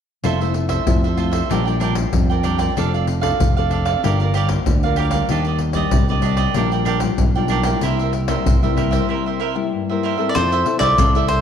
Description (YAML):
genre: samba and choro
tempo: 95 BPM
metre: 4/4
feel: straight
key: F major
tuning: A4 = 440 Hz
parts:
  - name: cavaquinho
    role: accompaniment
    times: 0.2-11.4 s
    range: D4 to G5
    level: -23 LUFS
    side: right 7 dB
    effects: none
  - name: nylon-string guitar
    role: accompaniment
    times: 0.2-11.4 s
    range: G2 to A4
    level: -24 LUFS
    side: left 7 dB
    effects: none
  - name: fingered electric bass with an envelope filter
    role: bass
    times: 0.2-11.4 s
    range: F1 to F2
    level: -20 LUFS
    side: right 1 dB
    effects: none
  - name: surdo, pandeiro and maracas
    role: percussion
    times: 0.2-11.4 s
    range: none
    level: -22 LUFS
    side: left 1 dB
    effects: none
  - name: cavaquinho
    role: melody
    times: 10.3-11.4 s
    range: C5 to D5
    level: -17 LUFS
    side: equal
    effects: none
room: wet echo chamber reverb, RT60 1.6 s, small room ambience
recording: 1960s-style stereo with parts hard left and right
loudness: -16 LUFS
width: side -8 dB against mid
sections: 0.2-10.4 A section; 10.4-11.4 B section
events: break 9.1-10.4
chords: 0.2 Fmaj7; 1.5 Bb6; 2.8 F6; 4.0 Gm7; 5.3 Ebmaj7; 6.6 Bb6; 7.8 C7; 10.4 Fmaj7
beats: | 0.24 0.87 1.51 2.14 | 2.77 3.40 4.04 4.67 | 5.30 5.93 6.57 7.20 | 7.83 8.46 9.09 9.72 | 10.36 10.99